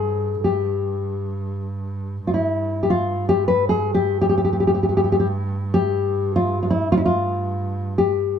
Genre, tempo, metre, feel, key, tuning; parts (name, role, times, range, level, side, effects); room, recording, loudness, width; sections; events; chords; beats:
Turkish makam ensemble; free time; G makam hicaz; A4 = 444 Hz
nylon-string guitar; melody; 0.0-8.4 s; E4-40c to B4; -19 LUFS; left 2 dB; plate reverb
bright double bass; drone; 0.0-8.4 s; G2; -26 LUFS; right 2 dB
moderate studio reverb, RT60 0.6 s; -19 LUFS; side -8 dB against mid
0.0-8.4 A section
free time